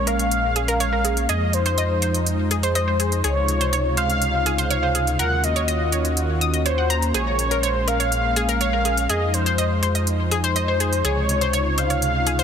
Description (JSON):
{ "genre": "progressive house", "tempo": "123 BPM", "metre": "4/4", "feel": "straight", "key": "Bb minor", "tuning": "A4 = 440 Hz", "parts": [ { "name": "wide unison lead", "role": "melody", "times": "0.0-12.4 s", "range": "C5 to Gb5", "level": "-24 LUFS", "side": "equal", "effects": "wide subtle chorus, ping-pong delay" }, { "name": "warm analog pad", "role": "sustained chords", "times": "0.0-12.4 s", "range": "C3 to Gb4", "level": "-26 LUFS", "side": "left 1 dB", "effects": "chorus" }, { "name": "dark detuned saw bass", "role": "bass", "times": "0.0-12.4 s", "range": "Bb1 to F2", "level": "-24 LUFS", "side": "equal", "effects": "none" }, { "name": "analog pluck", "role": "arpeggios", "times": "0.1-12.4 s", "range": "Ab4 to Eb6", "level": "-26 LUFS", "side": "left 1 dB", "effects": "chorus, ping-pong delay" }, { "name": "electronic hi-hat", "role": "drums", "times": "0.1-12.4 s", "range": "none", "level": "-26 LUFS", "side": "right 2 dB", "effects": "none" } ], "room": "light reverb", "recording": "dense, heavily limited modern master", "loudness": "-18 LUFS", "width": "side -8 dB against mid", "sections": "0.0-12.4 A section", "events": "none", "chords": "0.0 Bbm7; 1.3 Fm7; 3.2 Dbmaj7; 5.2 Ebm7; 7.1 Bbm7; 9.1 Fm7; 11.0 Dbmaj7", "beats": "0.32 0.80 | 1.29 1.78 2.27 2.75 | 3.24 3.73 4.22 4.71 | 5.19 5.68 6.17 6.66 | 7.14 7.63 8.12 8.61 | 9.10 9.58 10.07 10.56 | 11.05 11.53 12.02" }